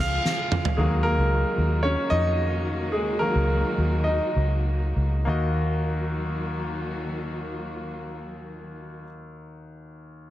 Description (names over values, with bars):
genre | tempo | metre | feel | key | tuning
piano-driven pop | 97-114 BPM | 4/4 | straight | Eb minor | A4 = 440 Hz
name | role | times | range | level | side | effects
bright concert grand piano | accompaniment | 0.0-10.3 s | Eb2 to F6 | -27 LUFS | equal | none
warm studio string section | sustained chords | 0.0-9.0 s | Db3 to Gb4 | -34 LUFS | left 1 dB | none
vintage muted fingered electric bass | bass | 0.0-9.0 s | Db2 to F2 | -24 LUFS | equal | none
loose indie drum kit | drums | 0.3-0.8 s | snare drum, toms | -26 LUFS | equal | none
room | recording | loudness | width
light reverb, small room ambience | dense, heavily limited modern master | -22 LUFS | side -14 dB against mid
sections
0.8-5.3 A section; 5.3-10.2 B section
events
band accent 0.0-0.8; drum fill 0.3-0.8; slowing down 0.8-5.3; grand piano solo 0.8-5.3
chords
0.0 Db; 0.8 Ebm